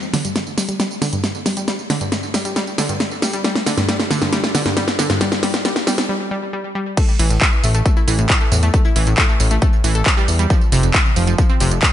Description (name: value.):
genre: uplifting trance.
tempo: 136 BPM.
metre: 4/4.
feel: straight.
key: A minor.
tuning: A4 = 440 Hz.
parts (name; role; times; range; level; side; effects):
big-room dance drum kit; drums; 0.0-11.9 s; crash cymbal, handclaps, hi-hat, snare drum, tambourine; -19 LUFS; equal; none.
analog pluck; arpeggios; 0.1-11.7 s; F2 to A4; -21 LUFS; right 1 dB; chorus, sidechain pumping, digital delay.
electronic kick drum; drums; 7.0-11.9 s; none; -16 LUFS; equal; none.
fat analog bass; bass; 7.2-11.8 s; F1 to E2; -17 LUFS; left 1 dB; sidechain pumping.
room: light reverb.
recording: nothing above 10.7 kHz.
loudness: -15 LUFS.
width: side -11 dB against mid.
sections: 0.0-7.0 A section; 7.0-11.9 B section.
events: build-up 0.0-7.0; drum fill 0.0-6.1; filter sweep on synth pluck 0.0-7.0; break 6.1-7.0; drop 7.0-11.9.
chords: 0.0 G5; 7.0 A5; 10.5 F5.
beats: 0.36 0.80 1.24 | 1.68 2.12 2.56 3.00 | 3.44 3.88 4.33 4.77 | 5.21 5.65 6.09 6.53 | 6.97 7.42 7.86 8.30 | 8.74 9.18 9.62 10.06 | 10.50 10.94 11.38 11.83.